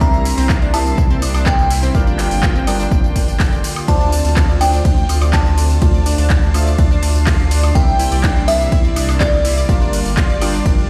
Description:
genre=progressive house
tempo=124 BPM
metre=4/4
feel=straight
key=D minor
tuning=A4 = 443 Hz
part: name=glassy synth bell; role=melody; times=0.0-10.9 s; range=D5 to Bb5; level=-24 LUFS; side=equal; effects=chorus, sidechain pumping, tape echo
part: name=dark studio violin section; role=second line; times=0.0-10.9 s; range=D5 to Bb5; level=-33 LUFS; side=equal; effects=sidechain pumping, tape echo
part: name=supersaw pad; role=sustained chords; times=0.0-10.9 s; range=C3 to F4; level=-30 LUFS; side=equal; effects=phaser, sidechain pumping
part: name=analog pluck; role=arpeggios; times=0.0-10.7 s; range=D3 to D6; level=-28 LUFS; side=equal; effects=chorus, cassette tape, sidechain pumping, tape echo
part: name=deep mellow chord stab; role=stabs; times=0.0-10.9 s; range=G3 to G5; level=-27 LUFS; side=equal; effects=chorus, sidechain pumping, tape echo
part: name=round analog bass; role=bass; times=0.0-10.8 s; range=G1 to D2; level=-20 LUFS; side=equal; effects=sidechain pumping
part: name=deep house drum kit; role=drums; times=0.0-10.9 s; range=handclaps, hi-hat, ride cymbal, tambourine, woodblock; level=-26 LUFS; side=equal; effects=overdrive
part: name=electronic kick drum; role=drums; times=0.0-10.8 s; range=none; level=-18 LUFS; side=equal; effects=overdrive
part: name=backwards swelling texture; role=texture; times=0.0-10.9 s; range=C6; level=-38 LUFS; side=equal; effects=none
room=little or no reverb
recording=played on a big sound system in a bare room, stone room reverb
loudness=-15 LUFS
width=mono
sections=0.0-10.9 A section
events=none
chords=0.0 C7; 1.9 Gm7; 3.9 Dm7; 7.8 C7; 9.7 Gm7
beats=| 0.01 0.50 0.98 1.46 | 1.95 2.43 2.92 3.40 | 3.88 4.37 4.85 5.33 | 5.82 6.30 6.79 7.27 | 7.75 8.24 8.72 9.21 | 9.69 10.17 10.66

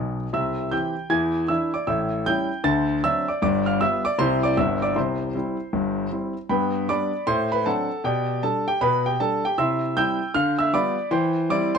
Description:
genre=jazz, stride piano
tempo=156 BPM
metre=4/4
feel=swing 63% on 8ths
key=C major, G major from 6.5 s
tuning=A4 = 440 Hz
part: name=clear grand piano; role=solo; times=0.0-11.8 s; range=G1 to A6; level=-21 LUFS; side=equal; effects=none
room=moderate club reverb, RT60 0.6 s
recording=dark, warm production, nothing above 10.6 kHz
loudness=-21 LUFS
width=side -6 dB against mid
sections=0.0-6.5 A section; 6.5-11.8 B section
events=none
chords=0.3 C; 1.1 E7; 1.9 A7; 2.6 D7; 3.4 G7; 4.2 C; 4.6 G; 5.0 C; 6.5 G; 7.3 D7/A; 8.0 G/B; 9.6 C; 10.4 G7/D; 11.1 C/E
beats=| 0.34 0.72 1.11 1.49 | 1.88 2.26 2.65 3.03 | 3.42 3.80 4.19 4.57 | 4.96 5.34 5.73 6.11 | 6.50 6.88 7.27 7.66 | 8.04 8.43 8.81 9.20 | 9.58 9.97 10.35 10.74 | 11.12 11.51

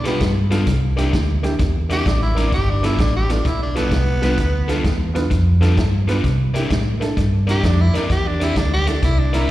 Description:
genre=electric blues shuffle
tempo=129 BPM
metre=4/4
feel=swing 67% on 8ths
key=G mixolydian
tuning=A4 = 440 Hz
part: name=growling tenor saxophone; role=melody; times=0.0-9.5 s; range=B3 to G4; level=-23 LUFS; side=equal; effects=slapback echo
part: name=warm upright piano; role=accompaniment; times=0.0-9.4 s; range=Bb3 to B4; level=-26 LUFS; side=right 3 dB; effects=slapback echo
part: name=overdriven electric guitar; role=riff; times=0.0-9.5 s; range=G3 to D5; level=-28 LUFS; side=left 5 dB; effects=slapback echo
part: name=vintage muted fingered electric bass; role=bass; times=0.0-9.5 s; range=G1 to C3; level=-18 LUFS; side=equal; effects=none
part: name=vintage drum kit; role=drums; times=0.1-9.4 s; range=hi-hat, kick drum, snare drum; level=-22 LUFS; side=equal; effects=slapback echo
room=little or no reverb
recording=live gig heard through the venue's PA, recital hall reverb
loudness=-16 LUFS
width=side -15 dB against mid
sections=0.0-9.5 A section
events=none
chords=0.0 G9; 0.7 C9; 2.5 G9; 6.2 C9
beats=0.20 | 0.67 1.13 1.59 2.06 | 2.52 2.98 3.45 3.91 | 4.38 4.84 5.30 5.77 | 6.23 6.70 7.16 7.63 | 8.09 8.56 9.03 9.49

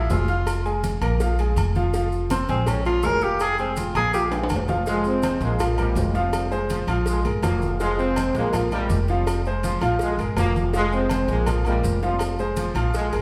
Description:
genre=latin, salsa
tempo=164 BPM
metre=4/4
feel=straight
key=unclear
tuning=A4 = 442 Hz
part: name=warm tenor saxophone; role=melody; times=0.0-4.2 s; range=C4 to Bb4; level=-26 LUFS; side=equal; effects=none
part: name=bright upright piano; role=accompaniment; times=0.0-13.2 s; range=F3 to F6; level=-29 LUFS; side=equal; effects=none
part: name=upright bass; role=bass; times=0.0-13.2 s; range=F1 to Bb1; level=-27 LUFS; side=equal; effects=none
part: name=congas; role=percussion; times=0.1-13.2 s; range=none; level=-35 LUFS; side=equal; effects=none
part: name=cowbell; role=percussion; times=0.1-13.1 s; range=none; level=-38 LUFS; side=equal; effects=none
part: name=maracas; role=percussion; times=0.1-13.2 s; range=none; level=-45 LUFS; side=equal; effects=none
part: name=timbales and agogo bells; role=percussion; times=0.1-13.2 s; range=none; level=-35 LUFS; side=equal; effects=none
part: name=mellow trombone section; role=melody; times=4.9-12.4 s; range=C3 to C4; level=-29 LUFS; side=equal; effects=none
part: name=brilliant trombone section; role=second line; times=4.9-13.1 s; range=F3 to Bb3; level=-32 LUFS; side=equal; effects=none
room=wet large studio reverb, RT60 1.4 s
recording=band playing live in one room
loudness=-23 LUFS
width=mono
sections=0.0-4.9 A section; 4.9-13.2 B section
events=tenor saxophone solo 0.0-4.9; drum fill 4.3-4.9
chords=0.0 Bb5; 1.9 Fm; 2.7 Bb5; 4.9 Fm; 5.6 Bb5; 6.3 Fm; 7.1 Bb5; 7.8 Fm; 8.5 Bb5; 9.3 Fm; 10.0 Bb5; 10.7 Fm; 11.5 Bb5; 12.2 Fm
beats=0.10 | 0.47 0.84 1.20 1.57 | 1.94 2.30 2.67 3.04 | 3.40 3.77 4.14 4.50 | 4.87 5.24 5.60 5.97 | 6.33 6.70 7.07 7.43 | 7.80 8.17 8.54 8.90 | 9.27 9.64 10.00 10.37 | 10.74 11.11 11.47 11.84 | 12.21 12.57 12.94

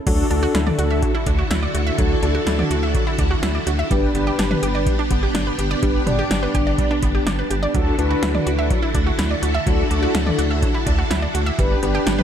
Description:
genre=synth-pop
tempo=125 BPM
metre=4/4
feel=straight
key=D major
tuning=A4 = 440 Hz
part: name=mellow synth brass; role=accompaniment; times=0.1-12.2 s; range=D4 to D5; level=-23 LUFS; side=left 2 dB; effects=chorus
part: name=string machine, full ensemble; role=sustained chords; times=0.1-12.2 s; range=D3 to A4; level=-24 LUFS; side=equal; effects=ensemble chorus
part: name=analog pluck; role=arpeggios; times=0.1-12.2 s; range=F#3 to E5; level=-27 LUFS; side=right 3 dB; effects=chorus, digital delay
part: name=rubbery square bass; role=bass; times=0.1-12.2 s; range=G1 to D2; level=-22 LUFS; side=equal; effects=none
part: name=electro analog drum machine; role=drums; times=0.1-12.2 s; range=crash cymbal, hi-hat, kick drum, snare drum, toms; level=-22 LUFS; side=equal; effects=overdrive
room=light reverb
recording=none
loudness=-17 LUFS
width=side -9 dB against mid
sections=0.1-12.2 A section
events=none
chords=0.1 Dadd9; 3.9 G; 7.7 Dadd9; 11.6 G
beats=| 0.07 0.55 1.03 1.51 | 1.99 2.47 2.95 3.43 | 3.91 4.39 4.87 5.35 | 5.83 6.31 6.79 7.27 | 7.75 8.23 8.71 9.19 | 9.67 10.15 10.63 11.11 | 11.59 12.07

